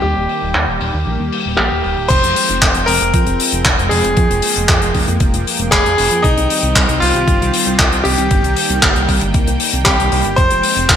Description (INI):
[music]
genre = italo disco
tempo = 116 BPM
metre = 4/4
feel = straight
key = F minor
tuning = A4 = 439 Hz
[part]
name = bright concert grand piano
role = melody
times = 0.0-11.0 s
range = Eb4 to C5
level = -17 LUFS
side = equal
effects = digital delay
[part]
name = warm analog pad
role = sustained chords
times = 0.0-11.0 s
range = Eb3 to G5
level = -21 LUFS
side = equal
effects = chorus
[part]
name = chorused synth bass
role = bass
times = 0.0-11.0 s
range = Eb1 to F2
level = -19 LUFS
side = equal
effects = none
[part]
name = damped 70s drum kit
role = drums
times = 0.3-11.0 s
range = crash cymbal, handclaps, hi-hat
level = -16 LUFS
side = left 1 dB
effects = low-pass filter on hats, studio reverb, low-pass filter on cymbals, low-pass filter on snare, low-pass filter on room, gated reverb
[part]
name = electronic kick drum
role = drums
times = 2.1-11.0 s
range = none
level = -17 LUFS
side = equal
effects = studio reverb
[sound]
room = moderate plate reverb, RT60 1.5 s, small room reverb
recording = bright 1980s-style digital production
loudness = -12 LUFS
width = side -9 dB against mid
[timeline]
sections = 0.0-2.1 A section; 2.1-11.0 B section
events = none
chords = 0.0 Eb; 2.1 Fmadd9; 6.2 Cm; 10.4 Fmadd9